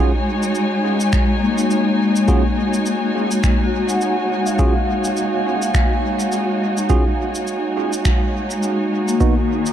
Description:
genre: ambient dub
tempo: 104 BPM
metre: 4/4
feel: swing 57% on 16ths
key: Eb minor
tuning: A4 = 435 Hz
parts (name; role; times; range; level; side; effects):
- dark symphonic string section; sustained chords; 0.0-9.7 s; D#3 to Ab5; -20 LUFS; equal; none
- bell-like tine electric piano; stabs; 0.0-9.3 s; B3 to Ab4; -27 LUFS; right 4 dB; medium stereo tremolo, dub echo
- electronic shaker and finger snaps; drums; 0.4-9.7 s; none; -29 LUFS; equal; dub echo
- electronic kick drum; drums; 1.1-9.3 s; none; -18 LUFS; equal; none
- vibraphone with medium mallets; arpeggios; 1.4-9.7 s; Bb3 to Ab5; -22 LUFS; left 2 dB; dub echo
- wind-like tuned noise texture; texture; 9.4-9.7 s; D#4 to D#5; -32 LUFS; right 4 dB; built-in reverb
room: light reverb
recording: dark, warm production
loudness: -16 LUFS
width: side -10 dB against mid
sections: 0.0-9.7 A section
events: none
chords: 0.0 Ebm11; 9.2 B/D#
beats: 0.55 1.13 1.71 | 2.28 2.86 3.44 4.01 | 4.59 5.17 5.75 6.32 | 6.90 7.48 8.05 8.63 | 9.21

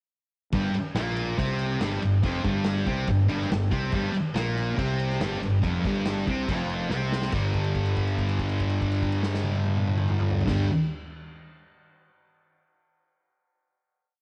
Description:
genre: garage rock duo or trio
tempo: 141 BPM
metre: 4/4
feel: straight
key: unclear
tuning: A4 = 441 Hz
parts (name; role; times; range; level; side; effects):
- thick fuzz guitar; riff; 0.5-10.7 s; F2 to C4; -27 LUFS; equal; distortion, cassette tape
- fuzz fingered electric bass; bass; 0.5-10.6 s; F1 to C2; -35 LUFS; equal; overdrive, tube saturation
- vintage drum kit; drums; 0.5-10.6 s; crash cymbal, kick drum, snare drum, toms; -35 LUFS; equal; cassette tape
room: light reverb, studio reverb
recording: home recording on cassette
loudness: -26 LUFS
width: mono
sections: 0.5-7.3 riff; 7.3-10.7 final chord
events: drum fill 6.9-7.3; held note 7.3-10.5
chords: 0.5 Fsus24; 7.3 G5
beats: | 0.52 0.95 1.38 1.81 | 2.23 2.66 3.09 3.51 | 3.94 4.36 4.78 5.21 | 5.63 6.05 6.47 6.90 | 7.32 7.74 8.17 8.59 | 9.02 9.44 9.87 10.30

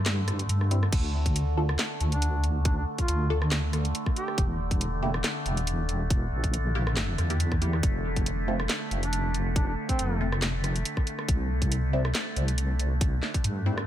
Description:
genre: deep dubstep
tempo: 139 BPM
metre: 4/4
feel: swing 54% on 16ths, half-time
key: D minor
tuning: A4 = 439 Hz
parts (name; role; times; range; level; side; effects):
- overtone-sweeping drone; sustained chords; 0.0-13.9 s; D3 to A3; -34 LUFS; right 1 dB; chorus, built-in reverb
- deep soft wobble bass; bass; 0.0-13.9 s; E1 to G2; -27 LUFS; equal; chorus
- garage drum kit; drums; 0.1-13.9 s; crash cymbal, handclaps, hi-hat, rim click, snare drum; -32 LUFS; equal; none
- filtered dub chord stab; stabs; 0.7-13.7 s; G3 to A4; -36 LUFS; equal; phaser, dub echo
- electronic kick drum; drums; 0.9-13.4 s; none; -26 LUFS; equal; none
- warm duduk; melody; 2.1-4.4, 9.0-10.2 s; C4 to G4; -36 LUFS; right 1 dB; dub echo
room: little or no reverb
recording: none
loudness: -25 LUFS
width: side -12 dB against mid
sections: 0.0-13.9 A section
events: break 0.1-0.9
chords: 0.0 C; 0.9 D5; 4.4 E(b5, no3); 7.8 F; 11.3 C5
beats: 0.06 0.49 | 0.93 1.36 1.79 2.22 | 2.65 3.08 3.52 3.95 | 4.38 4.81 5.24 5.67 | 6.11 6.54 6.97 7.40 | 7.83 8.26 8.70 9.13 | 9.56 9.99 10.42 10.85 | 11.29 11.72 12.15 12.58 | 13.01 13.44

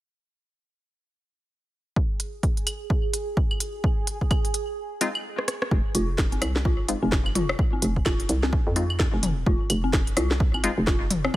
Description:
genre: minimal techno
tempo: 128 BPM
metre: 4/4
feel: swing 60% on 16ths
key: F minor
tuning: A4 = 438 Hz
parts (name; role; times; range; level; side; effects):
- electronic kick drum; drums; 2.0-11.4 s; none; -24 LUFS; equal; none
- bubbling stepped-filter texture; texture; 2.0-5.7 s; Ab4; -35 LUFS; right 6 dB; chorus, built-in reverb, sidechain pumping
- techno drum kit; drums; 2.2-11.2 s; hi-hat, rim click, snare drum; -28 LUFS; equal; overdrive
- garage drum kit; percussion; 2.7-11.4 s; claves, rim click, toms; -29 LUFS; left 2 dB; tape echo
- wavetable chord stab; stabs; 5.0-10.7 s; Ab3 to F4; -30 LUFS; left 3 dB; tape echo
- hollow knocking FM bass; bass; 5.7-11.3 s; Eb1 to F2; -26 LUFS; equal; sidechain pumping
- dark detuned synth bell; riff; 5.9-11.3 s; C4 to F4; -31 LUFS; left 1 dB; chorus, sidechain pumping, low-pass filter, tape echo
room: little or no reverb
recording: none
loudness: -22 LUFS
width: side -16 dB against mid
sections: 2.0-5.7 A section; 5.7-11.4 B section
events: break 4.8-5.7; drum fill 5.4-5.7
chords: 2.0 N.C.; 5.7 F5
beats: | 1.97 2.43 2.90 3.37 | 3.84 4.31 4.78 5.25 | 5.71 6.18 6.65 7.12 | 7.59 8.06 8.53 9.00 | 9.46 9.93 10.40 10.87 | 11.34

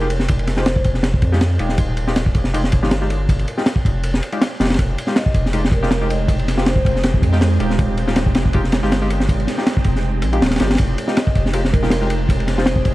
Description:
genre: drum and bass, jungle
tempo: 160 BPM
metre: 4/4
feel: swing 54% on 16ths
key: F minor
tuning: A4 = 440 Hz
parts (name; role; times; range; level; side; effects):
- vibraphone with soft mallets; melody; 0.0-0.8, 5.2-7.0, 11.2-12.8 s; Bb4 to Eb5; -28 LUFS; equal; dub echo
- deep mellow chord stab; stabs; 0.0-12.6 s; Ab3 to G4; -25 LUFS; left 1 dB; chorus, dub echo
- saturated sub bass; bass; 0.0-12.9 s; Eb1 to F2; -20 LUFS; equal; none
- crunchy breakbeat drum kit; drums; 0.1-12.9 s; kick drum, ride cymbal, snare drum; -18 LUFS; equal; none
- ethereal airy pad; sustained chords; 5.3-12.9 s; Ab3 to G4; -26 LUFS; right 2 dB; ensemble chorus, built-in reverb, vintage 12-bit sampler grit
room: light reverb, studio reverb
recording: dark, warm production, vinyl crackle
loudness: -15 LUFS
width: side -17 dB against mid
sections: 0.0-12.9 A section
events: kick drops out 4.0-4.8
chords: 0.0 Fm9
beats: | 0.29 0.66 1.04 1.41 | 1.79 2.16 2.54 2.91 | 3.29 3.66 4.04 4.41 | 4.79 5.16 5.54 5.91 | 6.29 6.66 7.04 7.41 | 7.79 8.16 8.54 8.91 | 9.29 9.66 10.04 10.41 | 10.79 11.16 11.54 11.91 | 12.29 12.66

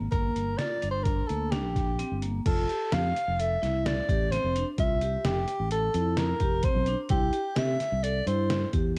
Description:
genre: progressive instrumental, band music in an uneven meter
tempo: 129 BPM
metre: 5/4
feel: straight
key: unclear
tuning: A4 = 440 Hz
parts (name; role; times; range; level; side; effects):
- vibraphone with hard mallets; arpeggios; 0.0-8.9 s; Bb3 to A4; -37 LUFS; equal; cassette tape
- fretless electric bass; bass; 0.0-9.0 s; F1 to C3; -32 LUFS; equal; subtle chorus
- warm soprano saxophone; melody; 0.1-8.7 s; G4 to F5; -32 LUFS; equal; cassette tape
- trip hop sampler-style drum kit; drums; 0.1-9.0 s; crash cymbal, hi-hat, kick drum, snare drum; -32 LUFS; equal; cassette tape
room: light reverb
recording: home recording on cassette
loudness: -28 LUFS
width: mono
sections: 0.0-2.5 A section; 2.5-9.0 B section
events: break 2.0-2.5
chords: 0.1 Gm; 2.5 Fmaj9; 7.1 C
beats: | 0.12 0.58 1.05 1.52 1.98 | 2.45 2.92 3.38 3.85 4.32 | 4.78 5.25 5.71 6.18 6.64 | 7.11 7.57 8.04 8.50 8.97

